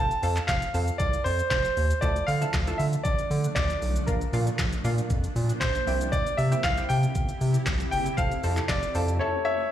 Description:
dance-pop; 117 BPM; 4/4; straight; A4 = 440 Hz
warm grand piano; melody; 0.0-9.7 s; Bb4 to A5; -28 LUFS; equal; ping-pong delay, slapback echo
punchy chord stab; accompaniment; 0.0-9.7 s; F3 to A4; -34 LUFS; right 2 dB; chorus, sidechain pumping, slapback echo
round analog bass; bass; 0.0-9.2 s; F1 to D3; -27 LUFS; equal; sidechain pumping
smooth R&B drum kit; drums; 0.1-9.2 s; handclaps, hi-hat, kick drum, shaker, snare drum; -29 LUFS; equal
shimmering ambient pad; sustained chords; 3.0-9.7 s; C3 to G4; -35 LUFS; equal; chorus, built-in reverb, sidechain pumping
light reverb, digital ambience; live gig heard through the venue's PA, club reverb; -23 LUFS; side -11 dB against mid
0.0-9.7 A section
silent gap 9.2-9.7
0.0 F; 2.0 Dmadd9; 4.1 Bb; 5.9 C; 8.2 F; 9.2 A

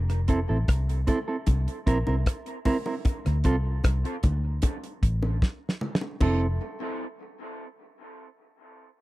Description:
dub reggae; 76 BPM; 4/4; straight; F major; A4 = 440 Hz
vintage muted fingered electric bass; bass; 0.0-6.6 s; F1 to D2; -25 LUFS; equal
damped 70s drum kit; drums; 0.1-6.4 s; crash cymbal, hi-hat, kick drum, rim click, snare drum; -24 LUFS; equal
mellow electric guitar; accompaniment; 0.3-6.5 s; C4 to Bb4; -30 LUFS; right 3 dB; spring reverb, dub echo
bongos; percussion; 0.7-6.6 s; -36 LUFS; left 1 dB; dub echo
little or no reverb; dry, close 1970s-style studio recording; -24 LUFS; side -18 dB against mid
0.0-6.2 A section; 6.2-9.0 B section
drum fill 5.4-6.2
0.0 Fmaj7; 1.5 C7; 3.1 D7(no3); 4.6 N.C.; 6.2 Fmaj7

